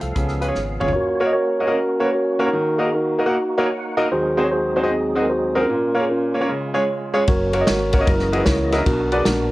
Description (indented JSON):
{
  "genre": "uptempo gospel",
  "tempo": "152 BPM",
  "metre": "4/4",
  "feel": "swing 64% on 8ths",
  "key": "F# major",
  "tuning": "A4 = 440 Hz",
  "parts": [
    { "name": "bright upright piano", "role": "accompaniment", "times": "0.0-9.5 s", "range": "A#2 to F#5", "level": "-22 LUFS", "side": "equal", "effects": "none" },
    { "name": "dark French horn section", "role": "sustained chords", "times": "0.0-0.9 s", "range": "F3 to F4", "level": "-41 LUFS", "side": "left 1 dB", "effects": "none" },
    { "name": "tonewheel organ", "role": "sustained chords", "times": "0.0-9.5 s", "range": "D#2 to G#5", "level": "-29 LUFS", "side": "right 2 dB", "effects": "slow rotary speaker, overdrive, chorus vibrato" },
    { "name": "fingered electric bass", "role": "bass", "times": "0.0-0.9, 7.3-9.5 s", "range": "F#1 to Db2", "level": "-25 LUFS", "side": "equal", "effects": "none" },
    { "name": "natural country drum kit", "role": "drums", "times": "0.0-0.9, 7.3-9.4 s", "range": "hi-hat, kick drum, ride cymbal, snare drum, toms", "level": "-22 LUFS", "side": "equal", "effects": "none" },
    { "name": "mellow tine electric piano", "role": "melody", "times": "0.9-9.5 s", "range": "B#3 to D#5", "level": "-20 LUFS", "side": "equal", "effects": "none" }
  ],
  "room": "light reverb, studio ambience",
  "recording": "worn, warbling old tape, cassette tape, warbly pitch drift",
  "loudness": "-17 LUFS",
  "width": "side -18 dB against mid",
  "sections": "1.0-9.5 A section",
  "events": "drum fill 0.6-1.0; tonewheel organ fill 3.3-4.1",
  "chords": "0.2 Db7; 1.0 F#; 2.5 D#m; 4.1 G#7/D#; 5.7 A#m; 6.5 C#; 7.3 F#; 8.1 F#13; 8.9 Bm"
}